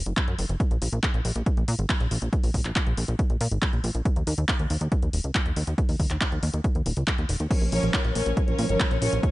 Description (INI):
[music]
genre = uplifting trance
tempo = 139 BPM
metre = 4/4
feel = straight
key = Bb minor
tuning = A4 = 440 Hz
[part]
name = plucky analog bass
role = bass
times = 0.0-9.2 s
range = Eb1 to Bb2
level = -26 LUFS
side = equal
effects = sidechain pumping
[part]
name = punchy analog drum machine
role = drums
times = 0.1-9.3 s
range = crash cymbal, handclaps, hi-hat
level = -30 LUFS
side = equal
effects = overdrive
[part]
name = electronic kick drum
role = drums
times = 0.2-9.3 s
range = none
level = -25 LUFS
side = equal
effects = overdrive
[part]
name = dark chamber string section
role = sustained chords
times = 7.5-9.3 s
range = F3 to Db5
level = -26 LUFS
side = equal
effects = sidechain pumping
[sound]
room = little or no reverb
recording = nothing above 10.4 kHz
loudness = -22 LUFS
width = side -18 dB against mid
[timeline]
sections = 0.0-9.3 A section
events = none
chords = 0.0 N.C.; 7.5 Bbm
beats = 0.17 | 0.60 1.03 1.46 1.90 | 2.33 2.76 3.19 3.62 | 4.05 4.49 4.92 5.35 | 5.78 6.21 6.64 7.08 | 7.51 7.94 8.37 8.80 | 9.23